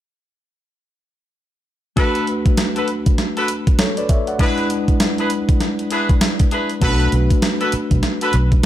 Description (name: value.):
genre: R&B, new jack swing.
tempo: 99 BPM.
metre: 4/4.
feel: swing 61% on 16ths.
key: B dorian.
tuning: A4 = 441 Hz.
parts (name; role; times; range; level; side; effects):
mellow tine electric piano; accompaniment; 2.0-8.7 s; G#3 to F#5; -22 LUFS; left 1 dB; medium stereo tremolo.
clear horn section; stabs; 2.0-8.3 s; D4 to B4; -23 LUFS; equal; digital delay.
clean 12-bit digital drum machine; drums; 2.0-8.7 s; hi-hat, kick drum, snare drum; -17 LUFS; equal; none.
vintage muted fingered electric bass; bass; 6.8-8.6 s; B1; -17 LUFS; equal; none.
room: light reverb.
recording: none.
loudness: -15 LUFS.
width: side -12 dB against mid.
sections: 2.0-8.7 A section.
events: none.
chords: 2.0 Bm7; 4.4 E7; 6.8 Bm7.